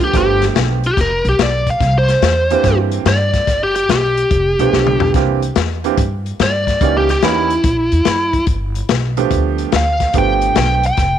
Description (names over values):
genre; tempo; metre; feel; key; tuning
electric blues shuffle; 144 BPM; 4/4; swing 67% on 8ths; G mixolydian; A4 = 440 Hz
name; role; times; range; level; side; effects
biting lead guitar; melody; 0.0-11.2 s; E4 to G5; -16 LUFS; equal; overdrive, slapback echo
bright concert grand piano; accompaniment; 0.0-10.8 s; E3 to G4; -19 LUFS; right 13 dB; none
upright bass; bass; 0.0-11.2 s; F1 to G2; -18 LUFS; equal; none
crunchy breakbeat drum kit; drums; 0.0-11.1 s; hi-hat, kick drum, snare drum, toms; -19 LUFS; left 5 dB; none
room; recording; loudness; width
small room ambience; 1960s-style stereo; -13 LUFS; side -10 dB against mid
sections
0.0-11.2 A section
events
drum fill 4.7-5.1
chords
0.0 G7; 1.8 C7; 3.5 G7; 5.1 C7; 6.8 C#dim7; 8.5 G7